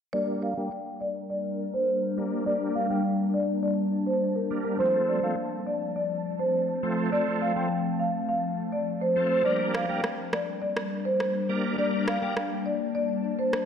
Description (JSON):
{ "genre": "dancehall", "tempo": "103 BPM", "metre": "4/4", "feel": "straight", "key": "G minor", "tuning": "A4 = 440 Hz", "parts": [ { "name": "marimba with medium mallets", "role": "melody", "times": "0.1-13.5 s", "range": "Bb4 to G5", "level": "-28 LUFS", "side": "equal", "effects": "low-pass filter, tape echo" }, { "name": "bright tonewheel organ", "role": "accompaniment", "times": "0.1-12.3 s", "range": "F3 to Bb4", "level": "-31 LUFS", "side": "equal", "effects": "chorus vibrato, slow rotary speaker, low-pass filter" }, { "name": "ethereal airy pad", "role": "sustained chords", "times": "0.9-13.7 s", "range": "F3 to A5", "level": "-30 LUFS", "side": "left 1 dB", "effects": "ensemble chorus, built-in reverb, low-pass filter" }, { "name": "electronic rim click", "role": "drums", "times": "9.7-13.7 s", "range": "none", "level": "-32 LUFS", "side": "right 1 dB", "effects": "overdrive" } ], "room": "wet lush hall reverb, RT60 1.7 s, digital ambience", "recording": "dreamy mix soaked in reverb", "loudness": "-25 LUFS", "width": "side -7 dB against mid", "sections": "0.1-13.7 A section", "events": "filter sweep 0.1-13.7", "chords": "0.1 Gm; 4.8 F; 9.5 Gm" }